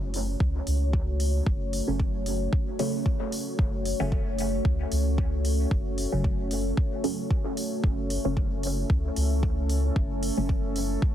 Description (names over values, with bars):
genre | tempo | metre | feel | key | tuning
dub techno | 113 BPM | 4/4 | swing 55% on 16ths | F# minor | A4 = 442 Hz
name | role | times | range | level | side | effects
deep dark ambient pad | sustained chords | 0.1-11.1 s | A3 to C#5 | -32 LUFS | left 1 dB | chorus, built-in reverb, sidechain pumping
filtered dub chord stab | stabs | 0.0-11.1 s | C#3 to C#4 | -32 LUFS | right 1 dB | phaser, sidechain pumping, dub echo
soft dub sub bass | bass | 0.0-11.0 s | F#1 to C#2 | -28 LUFS | equal | sidechain pumping
electronic hi-hat | drums | 0.1-10.9 s | none | -37 LUFS | equal | none
electronic kick drum | drums | 0.4-11.1 s | none | -26 LUFS | equal | none
room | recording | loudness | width
little or no reverb | heavily compressed radio sound, multiband compression | -24 LUFS | side -11 dB against mid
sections
0.0-11.1 A section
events
none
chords
0.0 F#m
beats
0.40 0.94 | 1.47 2.00 2.53 3.06 | 3.59 4.12 4.65 5.18 | 5.71 6.24 6.78 7.31 | 7.84 8.37 8.90 9.43 | 9.96 10.49 11.02